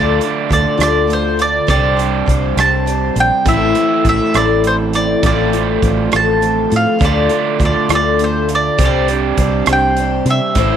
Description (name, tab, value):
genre	folk rock and heartland rock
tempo	68 BPM (dotted quarters)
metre	6/8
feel	straight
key	D minor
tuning	A4 = 440 Hz
part	bowl-back mandolin	melody	0.0-10.8 s	C5 to A5	-17 LUFS	right 2 dB	none
part	picked twelve-string acoustic guitar	accompaniment	0.0-10.8 s	A2 to C5	-19 LUFS	left 10 dB	none
part	crunchy overdriven guitar	riff	0.0-10.8 s	A2 to A4	-19 LUFS	right 11 dB	none
part	fingered electric bass	bass	0.0-10.8 s	A1 to C3	-18 LUFS	equal	none
part	natural country drum kit	drums	0.2-10.7 s	hi-hat, kick drum, rim click	-19 LUFS	right 2 dB	none
room	light reverb, small room ambience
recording	1960s-style stereo with parts hard left and right, faint mains hum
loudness	-12 LUFS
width	side -9 dB against mid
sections	0.0-10.8 A section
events	none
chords	0.0 Dm; 1.7 Csus2; 3.5 Am; 5.2 F/A; 7.0 Dm; 8.8 Csus2